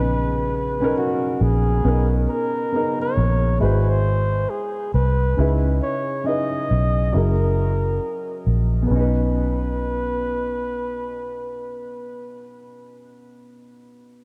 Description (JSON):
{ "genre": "lo-fi hip hop", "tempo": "68 BPM", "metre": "4/4", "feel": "swing 64% on 16ths", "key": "B major", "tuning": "A4 = 435 Hz", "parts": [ { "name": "dark flugelhorn", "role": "melody", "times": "0.0-12.6 s", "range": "F#4 to D#5", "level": "-28 LUFS", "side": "equal", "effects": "delay" }, { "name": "dark upright piano", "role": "accompaniment", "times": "0.0-14.2 s", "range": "B2 to B#4", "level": "-28 LUFS", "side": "equal", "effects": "cassette tape" }, { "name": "vintage muted fingered electric bass", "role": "bass", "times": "0.0-12.6 s", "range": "F#1 to C#2", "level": "-22 LUFS", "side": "equal", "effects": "none" } ], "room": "moderate lush hall reverb, RT60 3.1 s", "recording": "dreamy mix soaked in reverb", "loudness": "-21 LUFS", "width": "mono", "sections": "0.0-1.8 A section; 1.8-8.9 B section; 8.9-12.4 C section", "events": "none", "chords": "0.0 Bmaj9; 3.6 G#aug7; 5.4 C#m9; 7.1 F#7; 8.9 Badd9", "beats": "0.07 0.96 | 1.84 2.72 3.60 4.49 | 5.37 6.25 7.13 8.02 | 8.90 9.78 10.66 11.55" }